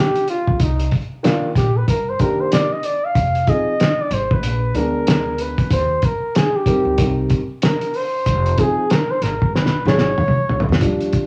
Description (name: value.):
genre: hip hop, jazz-hop.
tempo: 94 BPM.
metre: 4/4.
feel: swing 62% on 16ths.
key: unclear.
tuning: A4 = 440 Hz.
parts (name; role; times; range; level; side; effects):
breathy flugelhorn; melody; 0.0-10.8 s; Eb4 to F5; -23 LUFS; equal; cassette tape.
cloth-damped thuddy drum kit; drums; 0.2-11.3 s; hi-hat, kick drum, snare drum, toms; -21 LUFS; equal; cassette tape.
upright bass; bass; 0.5-11.1 s; E1 to E2; -24 LUFS; equal; none.
dark concert grand piano; accompaniment; 1.2-11.3 s; Eb3 to Bb4; -24 LUFS; equal; cassette tape.
room: little or no reverb.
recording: home recording on cassette, small room ambience.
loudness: -18 LUFS.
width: mono.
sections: 0.0-10.8 A section.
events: flugelhorn solo 0.0-10.8; drum fill 9.5-10.8.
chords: 0.0 G7(no3); 0.6 Cm9 (rootless); 3.2 Fm7; 4.4 Bb7b9; 5.7 Eb6; 7.0 Cm7; 8.3 Fm7; 9.5 E9.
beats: | 0.60 1.24 1.88 2.52 | 3.15 3.79 4.43 5.07 | 5.71 6.34 6.98 7.62 | 8.26 8.90 9.54 10.18 | 10.81.